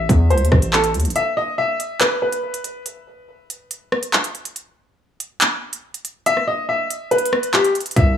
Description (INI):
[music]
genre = hip hop, drill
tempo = 141 BPM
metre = 4/4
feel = half-time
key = unclear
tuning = A4 = 440 Hz
[part]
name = clear upright piano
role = melody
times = 0.0-2.8, 6.3-8.1 s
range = G4 to E5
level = -19 LUFS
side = left 1 dB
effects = digital delay
[part]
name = distorted 808-style bass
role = bass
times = 0.0-1.1, 8.0-8.2 s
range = A1 to E2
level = -17 LUFS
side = equal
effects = distortion
[part]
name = drill drum kit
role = drums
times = 0.1-8.1 s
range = handclaps, hi-hat, kick drum, rim click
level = -18 LUFS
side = equal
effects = none
[sound]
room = light reverb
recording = small room ambience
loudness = -17 LUFS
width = side -9 dB against mid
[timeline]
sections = 0.0-8.2 A section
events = break 1.2-8.0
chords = 0.0 Am; 1.2 N.C.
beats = 0.30 0.73 | 1.16 1.58 2.01 2.43 | 2.86 3.28 3.71 4.13 | 4.56 4.99 5.41 5.84 | 6.26 6.69 7.11 7.54 | 7.96